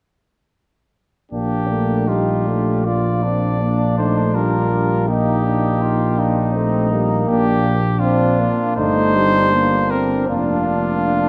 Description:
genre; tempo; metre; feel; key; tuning
classical, brass quintet; 80 BPM; 4/4; rubato; Bb major; A4 = 439 Hz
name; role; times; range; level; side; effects
warm cornet; melody; 1.3-11.3 s; F4 to D5; -24 LUFS; equal; none
dark trumpet; second line; 1.3-11.3 s; D4 to G4; -28 LUFS; equal; none
brilliant trombone; accompaniment; 1.3-11.3 s; Bb3 to F4; -27 LUFS; equal; none
mellow French horn; accompaniment; 1.3-11.3 s; G3 to C4; -24 LUFS; equal; none
dark tuba; bass; 1.3-11.3 s; F1 to Bb1; -22 LUFS; equal; none
room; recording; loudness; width
wet scoring stage reverb, RT60 1.6 s; dark, warm production; -18 LUFS; mono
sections
1.3-11.3 A section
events
none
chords
1.3 Bb; 8.8 Eb/G; 10.3 Bb/F

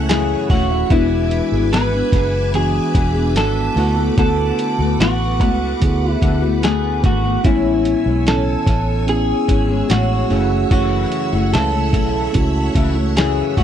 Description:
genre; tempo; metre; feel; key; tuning
indie pop, bedroom pop; 73 BPM; 4/4; straight; A major; A4 = 438 Hz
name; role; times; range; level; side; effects
electric guitar through a small old amp; melody; 0.0-13.6 s; E4 to B4; -20 LUFS; left 1 dB; analog chorus, tape echo
mellow tine electric piano; accompaniment; 0.0-13.6 s; E3 to G#5; -23 LUFS; right 5 dB; none
nylon-string guitar; accompaniment; 0.0-13.6 s; F#2 to G#4; -23 LUFS; left 5 dB; analog chorus, warbly pitch drift
string machine, violins; sustained chords; 0.0-13.6 s; B4 to F#6; -30 LUFS; equal; ensemble chorus
vintage muted fingered electric bass; bass; 0.0-13.6 s; D#1 to D2; -20 LUFS; equal; none
lo-fi sampler-style drum kit; drums; 0.1-13.6 s; hi-hat, kick drum, snare drum; -18 LUFS; equal; none
room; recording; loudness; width
little or no reverb; dry, close 1970s-style studio recording; -14 LUFS; side -9 dB against mid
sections
0.0-13.6 A section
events
none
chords
0.0 F#m7; 0.9 E7; 3.8 D6; 7.4 Amaj7; 10.3 F#m7

